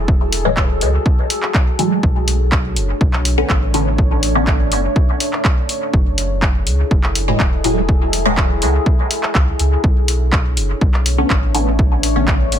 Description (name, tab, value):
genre	dub techno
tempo	123 BPM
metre	4/4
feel	straight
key	B minor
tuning	A4 = 440 Hz
part	deep dark ambient pad	sustained chords	0.0-12.6 s	A3 to C#5	-24 LUFS	left 1 dB	chorus, built-in reverb, sidechain pumping
part	soft dub sub bass	bass	0.0-12.6 s	E1 to C#2	-19 LUFS	equal	sidechain pumping
part	electronic kick drum	drums	0.1-12.4 s	none	-15 LUFS	equal	none
part	punchy analog drum machine	drums	0.3-12.6 s	handclaps, hi-hat	-21 LUFS	equal	dub echo
part	filtered dub chord stab	stabs	0.5-12.4 s	A2 to C#4	-20 LUFS	left 1 dB	phaser, vintage 12-bit sampler grit, sidechain pumping, dub echo
room	little or no reverb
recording	dense, heavily limited modern master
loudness	-14 LUFS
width	side -9 dB against mid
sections	0.0-12.6 A section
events	none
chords	0.0 F#m9; 2.0 Bm9; 5.9 F#m9; 9.8 Bm9